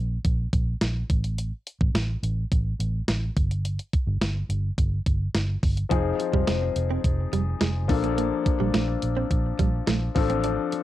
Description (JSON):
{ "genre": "1980s-style pop", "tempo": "106 BPM", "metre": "4/4", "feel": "straight", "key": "Bb major", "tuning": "A4 = 439 Hz", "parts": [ { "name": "vintage muted fingered electric bass", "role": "bass", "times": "0.0-10.6 s", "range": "F1 to Bb1", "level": "-26 LUFS", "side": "equal", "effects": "none" }, { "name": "clean 12-bit digital drum machine", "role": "drums", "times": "0.2-10.8 s", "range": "hi-hat, kick drum, snare drum", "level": "-25 LUFS", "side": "equal", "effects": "cassette tape" }, { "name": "warm concert grand piano", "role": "accompaniment", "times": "5.9-10.8 s", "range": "F3 to A4", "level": "-27 LUFS", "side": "left 8 dB", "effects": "cassette tape, plate reverb" }, { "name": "direct-recorded clean electric guitar", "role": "riff", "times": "5.9-10.8 s", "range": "F3 to D4", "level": "-31 LUFS", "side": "right 9 dB", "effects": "wide subtle chorus, cassette tape, analog delay" } ], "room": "light reverb", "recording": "home recording on cassette", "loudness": "-23 LUFS", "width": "side -14 dB against mid", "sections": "0.0-10.8 A section", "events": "none", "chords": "0.0 N.C.; 5.9 Fm7; 7.9 Bbmaj7; 10.2 Dm7/A", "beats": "0.25 0.82 | 1.38 1.95 2.52 3.08 | 3.65 4.21 4.78 5.34 | 5.91 6.48 7.04 7.61 | 8.18 8.74 9.31 9.87 | 10.44" }